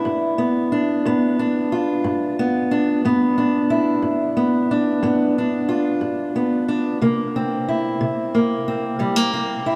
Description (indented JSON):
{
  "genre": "blues",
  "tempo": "60 BPM (dotted quarters)",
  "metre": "12/8",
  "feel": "straight",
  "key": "G mixolydian",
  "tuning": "A4 = 440 Hz",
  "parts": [
    { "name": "fingerpicked steel-string acoustic guitar", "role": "solo", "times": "0.0-9.8 s", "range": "G2 to F4", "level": "-20 LUFS", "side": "equal", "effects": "none" }
  ],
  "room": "wet cathedral reverb, RT60 5.6 s",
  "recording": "in a vast, echoing space",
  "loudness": "-20 LUFS",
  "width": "mono",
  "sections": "0.0-9.8 A section",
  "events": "none",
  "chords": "0.0 G7; 7.0 C7"
}